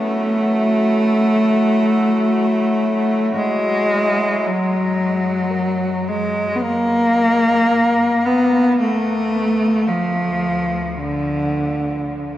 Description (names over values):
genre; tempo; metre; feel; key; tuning
ambient; free time; none; none; unclear; A4 = 440 Hz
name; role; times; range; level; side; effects
clear cello; melody; 0.0-12.4 s; D3 to B3; -16 LUFS; equal; diffuse ambient delay
pedal harmonium; drone; 0.0-4.5 s; F#3 to E4; -24 LUFS; equal; none
muted chamber double bass section; bass; 4.4-12.4 s; D2 to F#2; -37 LUFS; equal; none
soft round pluck; arpeggios; 5.5-7.1 s; A#4; -42 LUFS; equal; none
room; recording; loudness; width
wet cathedral reverb, RT60 5.7 s; worn, warbling old tape, cassette tape, warbly pitch drift; -15 LUFS; side -13 dB against mid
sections
0.0-4.4 A section; 4.4-12.4 B section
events
fade-in on double bass section 4.4-12.4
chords
0.0 F#m9; 4.4 F#; 8.8 Dm